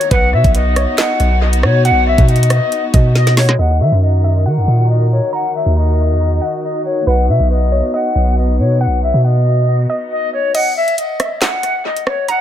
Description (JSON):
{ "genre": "hip hop, drill", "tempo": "138 BPM", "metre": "4/4", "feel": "half-time", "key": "unclear", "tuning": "A4 = 440 Hz", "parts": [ { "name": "reedy silver concert flute", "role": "melody", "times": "0.0-12.4 s", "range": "Db5 to F#5", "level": "-18 LUFS", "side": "left 3 dB", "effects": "low-pass filter, analog delay" }, { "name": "warm chamber string section", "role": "sustained chords", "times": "0.0-10.5 s", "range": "Eb3 to Bb4", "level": "-23 LUFS", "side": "left 1 dB", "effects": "none" }, { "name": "drill drum kit", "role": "drums", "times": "0.0-3.6, 10.5-12.4 s", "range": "crash cymbal, handclaps, hi-hat, kick drum, rim click, snare drum", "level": "-17 LUFS", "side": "equal", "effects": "analog delay" }, { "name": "soft round pluck", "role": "second line", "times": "0.1-12.4 s", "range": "B4 to Bb5", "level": "-24 LUFS", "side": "right 2 dB", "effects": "chorus, analog delay" }, { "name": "long sustained 808-style bass", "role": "bass", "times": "0.1-9.9 s", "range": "B1 to Eb3", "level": "-13 LUFS", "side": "equal", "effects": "none" } ], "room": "light reverb, digital ambience", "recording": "echo-heavy mix, low-pass filter", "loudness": "-12 LUFS", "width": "side -10 dB against mid", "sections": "0.0-3.6 A section; 3.6-10.5 B section; 10.5-12.4 C section", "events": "drum fill 3.2-3.6; filter sweep 3.6-10.5; break 10.5-12.4", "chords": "0.1 B; 3.6 Ebm; 7.1 B; 10.5 N.C." }